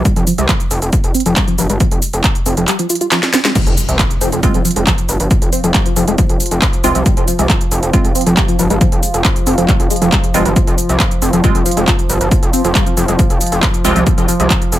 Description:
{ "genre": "driving peak-time techno", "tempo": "137 BPM", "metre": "4/4", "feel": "straight", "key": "F minor", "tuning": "A4 = 438 Hz", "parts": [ { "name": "tight sequenced synth", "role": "riff", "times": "0.0-14.6 s", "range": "F3 to F4", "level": "-19 LUFS", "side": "equal", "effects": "chorus, sidechain pumping, tape echo" }, { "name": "gritty driven synth bass", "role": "bass", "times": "0.0-14.8 s", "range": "F1 to C2", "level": "-17 LUFS", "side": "equal", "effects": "sidechain pumping" }, { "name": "electronic kick drum", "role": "drums", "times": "0.1-14.6 s", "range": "none", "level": "-15 LUFS", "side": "equal", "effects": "none" }, { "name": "techno drum kit", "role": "drums", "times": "0.1-14.8 s", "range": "crash cymbal, handclaps, hi-hat, shaker, snare drum", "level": "-18 LUFS", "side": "equal", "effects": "sidechain pumping on hats, sidechain pumping on perc, sidechain pumping on cymbals" }, { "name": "analog drone", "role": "drone", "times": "4.7-14.8 s", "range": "F3", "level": "-21 LUFS", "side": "right 1 dB", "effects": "chorus, sidechain pumping" }, { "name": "impact", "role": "sound effects", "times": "3.6-5.3 s", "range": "none", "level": "-24 LUFS", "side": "equal", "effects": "none" }, { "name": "wavetable chord stab", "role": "stabs", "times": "4.4-14.0 s", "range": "Ab3 to F4", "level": "-20 LUFS", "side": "right 2 dB", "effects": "phaser, sidechain pumping, tape echo" } ], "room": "little or no reverb", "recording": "none", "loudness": "-11 LUFS", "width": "side -14 dB against mid", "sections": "0.0-3.6 A section; 3.6-14.8 B section", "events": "filter sweep on synth arpeggio sound 0.0-3.6; drum fill 3.1-3.6; drop 3.6-14.8; impact 3.6-5.3", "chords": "0.0 N.C.; 3.6 F5" }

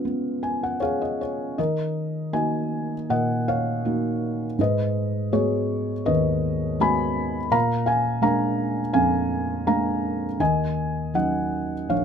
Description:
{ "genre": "classical, lyrical solo piano", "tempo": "81 BPM", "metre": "4/4", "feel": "rubato", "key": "Eb minor", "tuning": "A4 = 440 Hz", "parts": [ { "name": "felt-muted upright piano", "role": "solo", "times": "0.0-12.0 s", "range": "Bb1 to Cb6", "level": "-22 LUFS", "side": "equal", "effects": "none" } ], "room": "little or no reverb", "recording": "close, detailed microphones", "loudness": "-22 LUFS", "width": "side -7 dB against mid", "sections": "0.0-1.6 A section; 1.6-12.0 B section", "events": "felt piano fill 0.0-1.6", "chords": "0.0 C#7; 1.6 Ebm; 4.6 Abm7; 7.5 Bb7; 10.4 Ebm7" }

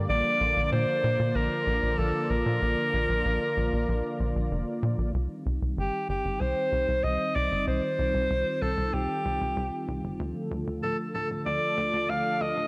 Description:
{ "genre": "synthwave", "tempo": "95 BPM", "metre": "4/4", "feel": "straight", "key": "C dorian", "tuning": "A4 = 441 Hz", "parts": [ { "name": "warm analog pad", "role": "sustained chords", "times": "0.0-12.7 s", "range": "D3 to D5", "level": "-35 LUFS", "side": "equal", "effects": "chorus" }, { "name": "tight sequencer bass", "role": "bass", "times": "0.0-12.7 s", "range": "D1 to Bb2", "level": "-32 LUFS", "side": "equal", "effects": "none" }, { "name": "clear alto saxophone", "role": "melody", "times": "0.1-12.7 s", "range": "G4 to F5", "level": "-30 LUFS", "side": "equal", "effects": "digital delay" } ], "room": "moderate lush hall reverb, RT60 2.1 s", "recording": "bright 1980s-style digital production, high-pass filter", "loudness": "-28 LUFS", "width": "mono", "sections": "0.0-5.1 A section; 5.1-12.7 B section", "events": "filter sweep 5.1-12.7", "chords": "0.1 Bb; 5.1 Cm; 10.2 Dm" }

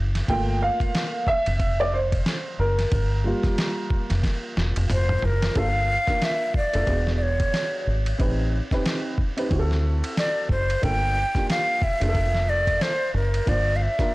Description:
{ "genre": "hip hop, jazz-hop", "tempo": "91 BPM", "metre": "4/4", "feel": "swing 59% on 16ths", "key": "G dorian", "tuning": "A4 = 445 Hz", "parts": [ { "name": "deep dub fingered electric bass", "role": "bass", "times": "0.0-13.9 s", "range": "E1 to D2", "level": "-23 LUFS", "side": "equal", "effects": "transformer saturation" }, { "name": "dusty soul sampler-style drum kit", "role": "drums", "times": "0.2-14.1 s", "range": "hi-hat, kick drum, ride cymbal, snare drum, toms", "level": "-27 LUFS", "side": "equal", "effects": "overdrive" }, { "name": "dark upright piano", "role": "accompaniment", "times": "0.3-14.1 s", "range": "G3 to G5", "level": "-28 LUFS", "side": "right 1 dB", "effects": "none" }, { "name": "breathy mellow silver concert flute", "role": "melody", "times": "4.9-14.1 s", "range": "Bb4 to G5", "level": "-24 LUFS", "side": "equal", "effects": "tape echo" } ], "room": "light reverb", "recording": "blown-out, overdriven recording, vinyl crackle, overdrive", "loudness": "-21 LUFS", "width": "side -20 dB against mid", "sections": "0.0-5.6 A section; 5.6-14.1 B section", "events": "upright piano solo 0.0-5.6; drum fill 4.2-5.6", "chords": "0.3 Gm7; 6.9 E7; 8.2 Am7b5; 9.5 D7; 10.8 Gm7" }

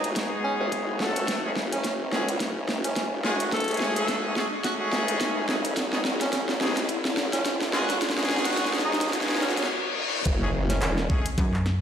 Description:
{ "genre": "glitch hop", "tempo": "107 BPM", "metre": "4/4", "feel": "swing 57% on 16ths", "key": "F# dorian", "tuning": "A4 = 440 Hz", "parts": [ { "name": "clear tenor saxophone", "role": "melody", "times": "0.0-10.9 s", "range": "C#4 to A4", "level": "-32 LUFS", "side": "right 1 dB", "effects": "tape echo" }, { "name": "formant-sweep wobble bass", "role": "bass", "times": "0.0-11.1 s", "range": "E1 to D#2", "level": "-30 LUFS", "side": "equal", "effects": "chorus, overdrive, high-pass filter" }, { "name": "dubstep drum kit", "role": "drums", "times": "0.0-11.8 s", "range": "handclaps, hi-hat, snare drum", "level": "-29 LUFS", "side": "equal", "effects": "overdrive, studio reverb" }, { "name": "riser, reverse cymbal and impact", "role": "sound effects", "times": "0.1-11.8 s", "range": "none", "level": "-33 LUFS", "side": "equal", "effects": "none" }, { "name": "brilliant horn section", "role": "stabs", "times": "0.2-11.2 s", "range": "G#3 to A4", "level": "-30 LUFS", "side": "equal", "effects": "sidechain pumping, low-pass filter, tape echo" }, { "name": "electronic kick drum", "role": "drums", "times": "0.2-11.5 s", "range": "none", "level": "-29 LUFS", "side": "equal", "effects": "overdrive, high-pass filter on kick, studio reverb" }, { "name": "slap-like FM bass", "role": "bass", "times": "11.4-11.8 s", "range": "F#2", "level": "-24 LUFS", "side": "equal", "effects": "none" } ], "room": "moderate lush hall reverb, RT60 1.7 s", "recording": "played on a big sound system in a bare room, stone room reverb, high-pass filter", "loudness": "-23 LUFS", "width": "side -8 dB against mid", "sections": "0.0-10.3 A section; 10.3-11.8 B section", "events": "build-up 0.0-10.3; drum fill 0.0-9.7; riser 0.1-9.7; reverse cymbal 9.1-10.3; stop 9.7-10.3; drop 10.3-11.8; impact 10.3-11.8", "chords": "0.0 G#m7; 1.3 F#madd9; 5.8 G#m7; 10.3 F#madd9" }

